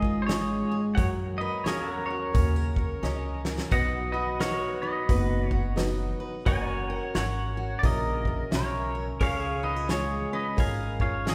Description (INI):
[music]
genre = honky-tonk and classic country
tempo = 87 BPM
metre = 4/4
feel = swing 61% on 8ths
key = unclear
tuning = A4 = 440 Hz
[part]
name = pedal steel guitar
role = melody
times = 0.0-11.3 s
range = F#4 to G#5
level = -34 LUFS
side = equal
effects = none
[part]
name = picked steel-string acoustic guitar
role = accompaniment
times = 0.0-11.3 s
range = G#2 to B4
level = -35 LUFS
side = equal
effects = none
[part]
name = tack piano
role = accompaniment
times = 0.0-11.3 s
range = C#4 to F#5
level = -41 LUFS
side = equal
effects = none
[part]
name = pedal steel guitar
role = sustained chords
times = 0.0-11.3 s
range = G#4 to F#5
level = -40 LUFS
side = equal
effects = none
[part]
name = upright bass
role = bass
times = 0.0-11.3 s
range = F#1 to F#2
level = -34 LUFS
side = equal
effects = none
[part]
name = natural country drum kit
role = drums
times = 0.0-11.3 s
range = hi-hat, kick drum, snare drum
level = -31 LUFS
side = equal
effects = none
[sound]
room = moderate concert hall reverb, RT60 2.0 s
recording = recorded in a church or concert hall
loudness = -28 LUFS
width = mono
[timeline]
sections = 0.0-11.3 A section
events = drum fill 3.0-3.7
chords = 0.0 C#; 1.0 F#; 3.7 B; 6.5 F#; 9.2 C#